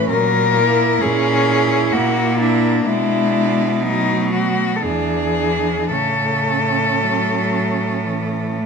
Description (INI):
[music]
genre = classical, lyrical piece for cello ensemble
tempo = 54-66 BPM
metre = 3/4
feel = rubato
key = A major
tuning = A4 = 443 Hz
[part]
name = rich cello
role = melody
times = 0.0-8.5 s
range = D4 to A#4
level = -19 LUFS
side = left 4 dB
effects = none
[part]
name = rich cello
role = second line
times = 0.0-8.7 s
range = A3 to E4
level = -23 LUFS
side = right 10 dB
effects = none
[part]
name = rich cello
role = accompaniment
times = 0.0-8.7 s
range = C#3 to C#4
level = -22 LUFS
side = left 2 dB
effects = none
[part]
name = bright cello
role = bass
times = 0.1-8.7 s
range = E2 to B2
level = -22 LUFS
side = right 3 dB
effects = none
[sound]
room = moderate recital hall reverb, RT60 1.7 s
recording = close, detailed microphones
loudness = -15 LUFS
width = side -5 dB against mid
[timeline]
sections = 0.0-8.7 A section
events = none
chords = 0.1 A#m7b5; 2.9 Bm; 3.8 B7; 4.8 E7; 5.9 A